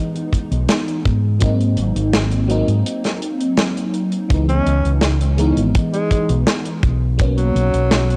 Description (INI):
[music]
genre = vaporwave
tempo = 83 BPM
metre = 4/4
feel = straight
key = C# dorian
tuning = A4 = 441 Hz
[part]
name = FM electric piano with soft pad layer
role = accompaniment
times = 0.0-8.2 s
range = E3 to D#4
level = -24 LUFS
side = equal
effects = phaser, analog chorus, cassette tape, analog delay
[part]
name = tight metal drum kit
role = drums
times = 0.2-8.2 s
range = hi-hat, snare drum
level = -23 LUFS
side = equal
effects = vintage 12-bit sampler grit
[part]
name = kick drum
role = drums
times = 0.3-7.3 s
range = none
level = -19 LUFS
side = equal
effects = vintage 12-bit sampler grit
[part]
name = fingered electric bass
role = bass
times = 0.5-8.2 s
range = G#1 to G#2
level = -20 LUFS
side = equal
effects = tube saturation
[part]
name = breathy alto saxophone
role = melody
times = 4.5-8.2 s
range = F#3 to C#4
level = -25 LUFS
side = equal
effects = tape echo
[sound]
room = light reverb, small room ambience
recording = dry, gritty hardware recording, transformer saturation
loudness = -18 LUFS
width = mono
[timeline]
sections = 0.0-8.2 A section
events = break 2.9-4.3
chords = 0.0 C#m9 (rootless); 1.0 G#9; 4.3 C#m9; 6.8 F#add11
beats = 0.69 | 1.41 2.13 2.86 3.58 | 4.30 5.03 5.75 6.47 | 7.19 7.92